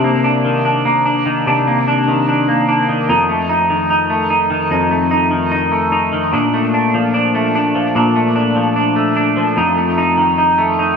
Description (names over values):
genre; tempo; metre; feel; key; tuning
dream pop; 74 BPM; 4/4; straight; unclear; A4 = 440 Hz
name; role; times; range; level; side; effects
clean electric guitar; solo; 0.0-11.0 s; F2 to Eb4; -12 LUFS; equal; wide subtle chorus, dub echo
room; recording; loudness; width
wet echo chamber reverb, RT60 1.7 s; echo-heavy mix; -12 LUFS; side -6 dB against mid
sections
0.0-11.0 A section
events
none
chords
0.0 Cm9; 3.1 F7; 6.3 Bbmaj7; 9.6 F7